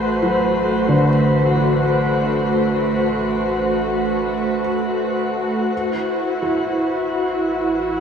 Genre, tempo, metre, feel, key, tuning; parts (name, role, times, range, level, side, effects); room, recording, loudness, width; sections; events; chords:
ambient; free time; A dorian; A4 = 436 Hz
warm analog pad; sustained chords; 0.0-8.0 s; A3 to C5; -18 LUFS; equal; chorus
felt-muted upright piano; arpeggios; 0.0-8.0 s; D3 to F#4; -23 LUFS; equal; diffuse ambient delay
round analog bass; bass; 0.0-8.0 s; A1; -38 LUFS; equal; tube saturation
wet shimmer reverb, RT60 7.5 s; -17 LUFS; side -7 dB against mid
0.0-8.0 A section
0.0 Am69